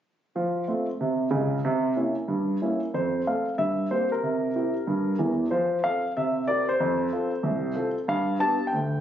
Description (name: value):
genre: jazz, stride piano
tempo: 186 BPM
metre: 4/4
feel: swing 65% on 8ths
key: F major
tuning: A4 = 440 Hz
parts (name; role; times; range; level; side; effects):
- dark baby grand piano; solo; 0.4-9.0 s; C2 to A5; -24 LUFS; equal; none
room: moderate studio reverb, RT60 0.8 s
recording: recorded on a phone in the room, club reverb, nothing above 7.6 kHz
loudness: -24 LUFS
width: side -10 dB against mid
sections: 0.4-2.9 A section; 2.9-9.0 B section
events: none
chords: 0.4 F; 1.6 C7b9; 2.9 F; 3.6 C7/G; 4.2 C7; 5.5 F; 6.2 C7; 6.8 F; 8.1 G7